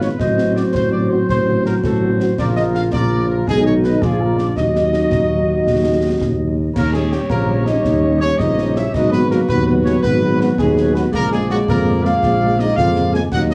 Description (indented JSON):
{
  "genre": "military-style march for wind band",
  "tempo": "110 BPM (dotted quarters)",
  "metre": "6/8",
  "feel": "straight",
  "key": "Eb minor",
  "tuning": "A4 = 440 Hz",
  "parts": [
    { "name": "dark trumpet section", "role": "melody", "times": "0.0-13.5 s", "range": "Gb4 to Ab5", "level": "-24 LUFS", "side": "equal", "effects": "none" },
    { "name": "clear woodwind section", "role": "second line", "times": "0.0-13.5 s", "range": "Eb4 to Eb5", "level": "-28 LUFS", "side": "equal", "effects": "tape echo" },
    { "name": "dark French horn section", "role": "accompaniment", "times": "0.0-13.5 s", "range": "D3 to Ab4", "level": "-26 LUFS", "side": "equal", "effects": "none" },
    { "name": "dark trombone section", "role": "sustained chords", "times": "0.0-13.5 s", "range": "Eb3 to Eb4", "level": "-25 LUFS", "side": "equal", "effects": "none" },
    { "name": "mellow tuba", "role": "bass", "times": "0.0-13.5 s", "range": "Ab1 to F2", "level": "-21 LUFS", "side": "equal", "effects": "none" },
    { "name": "concert snare drum, concert bass drum and clash cymbals", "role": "drums", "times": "0.0-13.5 s", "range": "none", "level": "-26 LUFS", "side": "equal", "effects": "none" },
    { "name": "clear euphonium", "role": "second line", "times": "6.8-13.5 s", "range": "Gb3 to Ab4", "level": "-28 LUFS", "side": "equal", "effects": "none" }
  ],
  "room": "light reverb",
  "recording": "small room ambience",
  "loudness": "-16 LUFS",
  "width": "mono",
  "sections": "0.0-6.8 A section; 6.8-13.5 B section",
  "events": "none",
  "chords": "0.2 Am6; 2.4 Bb; 3.5 Abm/Cb; 4.0 Bb; 4.6 Ebm; 6.8 Eb7; 8.9 Abm7; 11.1 Bb7"
}